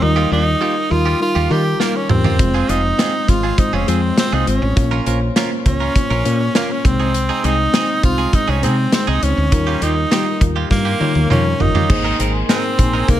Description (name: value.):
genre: 1980s-style pop.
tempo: 101 BPM.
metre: 4/4.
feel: straight.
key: unclear.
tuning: A4 = 440 Hz.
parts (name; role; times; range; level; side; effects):
bright tenor saxophone; melody; 0.0-13.2 s; Bb3 to G4; -20 LUFS; right 2 dB; ping-pong delay.
mellow FM electric piano; accompaniment; 0.0-13.2 s; Ab2 to Eb5; -21 LUFS; left 3 dB; chorus.
direct-recorded clean electric guitar; riff; 0.0-13.1 s; Bb3 to Bb4; -25 LUFS; right 8 dB; lush chorus, ping-pong delay.
woody fretless electric bass; bass; 0.0-13.2 s; F1 to Eb3; -19 LUFS; equal; none.
modern studio drum kit; drums; 1.8-13.2 s; crash cymbal, hi-hat, kick drum, snare drum, toms; -18 LUFS; equal; none.
chorused pulse-width pad; sustained chords; 12.3-13.2 s; Bb4 to C6; -27 LUFS; equal; none.
room: light reverb, small room reverb.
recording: none.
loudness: -14 LUFS.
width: side -12 dB against mid.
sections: 0.0-11.9 A section; 11.9-13.2 B section.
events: drum fill 1.8-2.4, 10.7-11.9.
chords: 0.0 Ebadd9; 2.4 Fm; 4.8 Bbm; 6.8 Ab/C; 9.5 Ebadd9; 11.9 Abadd9.